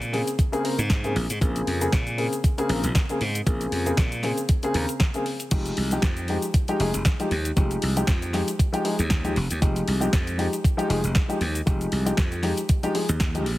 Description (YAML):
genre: nu-disco, nu disco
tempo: 117 BPM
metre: 4/4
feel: swing 55% on 16ths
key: F minor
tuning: A4 = 440 Hz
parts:
  - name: glassy slap bass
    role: bass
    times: 0.0-13.6 s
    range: F1 to Bb2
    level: -26 LUFS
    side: equal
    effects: none
  - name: house drum kit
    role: drums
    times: 0.0-13.6 s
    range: crash cymbal, hi-hat, shaker, snare drum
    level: -30 LUFS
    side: equal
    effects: none
  - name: dark concert grand piano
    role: accompaniment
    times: 0.1-13.4 s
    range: Db3 to Bb4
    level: -27 LUFS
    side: left 1 dB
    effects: tape echo
  - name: electronic kick drum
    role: drums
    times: 0.4-13.3 s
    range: none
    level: -22 LUFS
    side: equal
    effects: overdrive
room: light reverb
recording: heavily compressed radio sound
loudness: -21 LUFS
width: side -17 dB against mid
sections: 0.0-13.6 A section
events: none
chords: 0.0 Bbm9; 5.5 Fm9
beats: 0.39 0.90 | 1.42 1.93 2.44 2.95 | 3.47 3.98 4.49 5.00 | 5.52 6.03 6.54 7.06 | 7.57 8.08 8.59 9.11 | 9.62 10.13 10.64 11.16 | 11.67 12.18 12.70 13.21